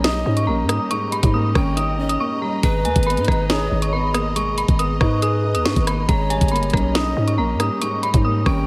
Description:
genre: hip hop, drill.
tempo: 139 BPM.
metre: 4/4.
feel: half-time.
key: G# harmonic minor.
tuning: A4 = 441 Hz.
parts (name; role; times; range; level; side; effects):
dark detuned synth bell; melody; 0.0-8.6 s; G#5 to D#6; -27 LUFS; equal; chorus, tremolo, low-pass filter, tape echo.
breathy pan flute; second line; 0.0-8.7 s; B4 to G5; -31 LUFS; equal; tape echo.
dark baby grand piano; accompaniment; 0.0-8.7 s; G#2 to G#4; -28 LUFS; equal; low-pass filter.
warm studio string section; sustained chords; 0.0-8.7 s; B2 to A#5; -34 LUFS; equal; none.
growling 808-style bass; bass; 0.0-8.7 s; G1 to G#2; -24 LUFS; equal; none.
drill drum kit; drums; 0.0-8.6 s; hi-hat, kick drum, rim click, snare drum; -23 LUFS; equal; none.
room: moderate plate reverb, RT60 1.9 s, small room ambience.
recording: dreamy mix soaked in reverb.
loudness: -20 LUFS.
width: mono.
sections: 0.0-8.7 A section.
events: silent gap 2.2-2.6.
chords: 0.0 D#7; 2.6 G#madd9; 6.1 D#7.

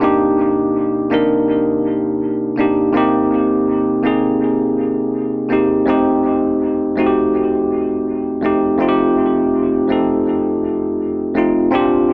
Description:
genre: R&B.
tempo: 82 BPM.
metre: 4/4.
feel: straight.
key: unclear.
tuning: A4 = 440 Hz.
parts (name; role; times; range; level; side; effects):
bell-like tine electric piano; solo; 0.0-12.1 s; F2 to Bb4; -13 LUFS; equal; dub echo.
room: moderate echo chamber reverb, RT60 1.7 s.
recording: echo-heavy mix, AM radio sound.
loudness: -13 LUFS.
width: side -29 dB against mid.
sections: 0.0-11.7 A section.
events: none.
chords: 0.0 Cm7; 2.9 Abmaj7/C; 5.9 F7.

